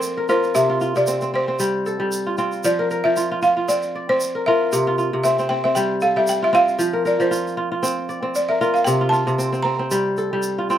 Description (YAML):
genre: west african traditional, West African string and xylophone music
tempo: 116 BPM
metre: 4/4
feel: swing 55% on 16ths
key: C mixolydian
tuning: A4 = 439 Hz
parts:
  - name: balafon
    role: melody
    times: 0.0-10.1 s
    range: Bb4 to Bb5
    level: -20 LUFS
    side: equal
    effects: slapback echo
  - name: kora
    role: arpeggios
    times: 0.0-10.8 s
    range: C3 to D5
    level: -20 LUFS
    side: equal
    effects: slapback echo
  - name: tube shaker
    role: percussion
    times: 0.0-10.8 s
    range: none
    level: -32 LUFS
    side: right 3 dB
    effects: none
room: little or no reverb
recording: recorded outdoors, with no room sound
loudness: -18 LUFS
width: side -10 dB against mid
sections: 0.0-10.8 A section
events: balafon solo 0.0-10.8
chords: 0.0 F5; 0.6 C5; 2.6 F5; 4.7 C5; 6.8 F5; 8.9 C5